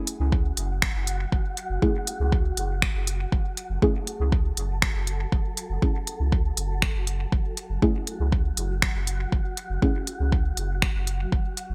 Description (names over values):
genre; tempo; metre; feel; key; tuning
dub techno; 120 BPM; 4/4; straight; F# minor; A4 = 440 Hz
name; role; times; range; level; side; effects
wind-like tuned noise texture; texture; 0.2-11.7 s; F#3 to A4; -40 LUFS; equal; built-in reverb, ensemble chorus, sidechain pumping
deep house drum kit; drums; 0.1-11.7 s; finger snaps, hi-hat; -29 LUFS; equal; gated reverb, dub echo
warm sub bass; bass; 0.2-11.7 s; F#1 to C#2; -29 LUFS; equal; tube saturation, sidechain pumping
electronic kick drum; drums; 0.3-11.4 s; none; -27 LUFS; equal; none
deep mellow chord stab; stabs; 1.8-9.9 s; A3 to G#4; -31 LUFS; equal; chorus, phaser, sidechain pumping, dub echo
room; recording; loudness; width
little or no reverb; bright 1980s-style digital production; -26 LUFS; mono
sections
0.0-11.7 A section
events
filter sweep on synth stab 0.0-11.7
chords
0.0 F#m